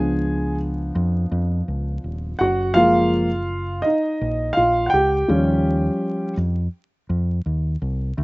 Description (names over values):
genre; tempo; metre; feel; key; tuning
hip hop, jazz-hop; 83 BPM; 4/4; swing 64% on 16ths; unclear; A4 = 440 Hz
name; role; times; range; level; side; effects
dark concert grand piano; accompaniment; 0.0-6.3 s; F3 to Ab5; -19 LUFS; equal; slapback echo
deep dub fingered electric bass; bass; 0.0-8.2 s; Eb1 to F2; -23 LUFS; equal; none
room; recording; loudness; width
little or no reverb; recorded outdoors, with no room sound, vinyl crackle, nothing above 7.9 kHz; -18 LUFS; side -23 dB against mid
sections
0.0-8.2 A section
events
grand piano solo 0.0-8.2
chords
0.0 Db7b9; 2.4 Gbmaj7; 5.3 Eb9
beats
0.23 0.95 1.67 | 2.40 3.12 3.84 4.56 | 5.29 6.01 6.73 7.46 | 8.18